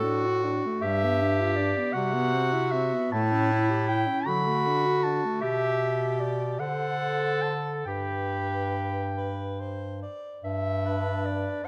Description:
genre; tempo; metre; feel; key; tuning
classical, lyrical piece for single-reed quartet; 45-55 BPM (dotted quarters); 6/8; rubato; G major; A4 = 440 Hz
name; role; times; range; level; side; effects
dark clarinet; melody; 0.0-11.7 s; A4 to B5; -32 LUFS; equal; none
mellow alto saxophone; second line; 0.0-11.7 s; F#3 to D5; -36 LUFS; equal; none
warm clarinet; accompaniment; 0.0-11.7 s; D4 to A4; -32 LUFS; equal; none
warm bass clarinet; bass; 0.0-11.7 s; F#2 to D3; -32 LUFS; equal; none
room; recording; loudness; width
light reverb; close, detailed microphones; -27 LUFS; mono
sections
0.0-10.4 A section; 10.4-11.7 A section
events
none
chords
0.0 D; 0.8 G; 1.9 Cmaj7; 3.1 A7; 4.3 D; 5.4 G/B; 6.6 D7; 7.9 G

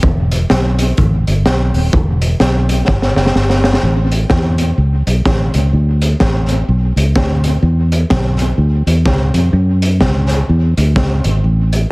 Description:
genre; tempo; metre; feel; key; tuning
ska; 126 BPM; 4/4; swing 60% on 8ths; A major; A4 = 440 Hz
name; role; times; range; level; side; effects
fingered electric bass; bass; 0.0-11.8 s; D#1 to F#2; -13 LUFS; equal; none
crunchy breakbeat drum kit; drums; 0.0-11.8 s; hi-hat, kick drum, snare drum; -15 LUFS; equal; tape echo
room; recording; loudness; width
light reverb; heavily compressed radio sound; -11 LUFS; side -25 dB against mid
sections
0.0-3.8 A section; 3.8-11.9 B section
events
drum fill 2.9-3.8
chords
none

